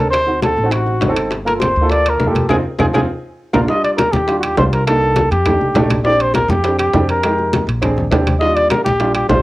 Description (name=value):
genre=Afro-Cuban jazz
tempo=203 BPM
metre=4/4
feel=straight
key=unclear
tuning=A4 = 442 Hz
part: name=breathy trumpet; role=melody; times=0.0-9.4 s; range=F#4 to Eb5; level=-16 LUFS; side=equal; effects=cassette tape
part: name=warm baby grand piano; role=accompaniment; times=0.0-9.4 s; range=G3 to Bb4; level=-20 LUFS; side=right 1 dB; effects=none
part: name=upright bass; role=bass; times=0.0-9.4 s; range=G1 to F2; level=-20 LUFS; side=equal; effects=none
part: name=bongos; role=percussion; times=0.1-9.4 s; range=none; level=-24 LUFS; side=left 3 dB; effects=none
part: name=claves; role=percussion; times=0.1-9.3 s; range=none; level=-31 LUFS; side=left 3 dB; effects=none
part: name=congas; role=percussion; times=0.1-9.4 s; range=none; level=-21 LUFS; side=left 1 dB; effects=none
part: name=timbales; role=percussion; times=0.1-9.4 s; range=none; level=-23 LUFS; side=right 3 dB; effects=none
room=moderate studio reverb, RT60 0.5 s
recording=home recording on cassette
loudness=-13 LUFS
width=side -18 dB against mid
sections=0.0-3.7 A section; 3.7-9.4 B section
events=band accent 2.5-3.7; drum fill 2.8-3.7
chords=0.1 D7b9; 1.3 Gm7; 2.5 Fm7; 3.1 Bb; 3.7 Ebmaj7; 4.9 Cm7; 5.5 F13; 6.0 Bb69; 7.2 Fm9; 7.8 Bb9; 8.4 Ebmaj7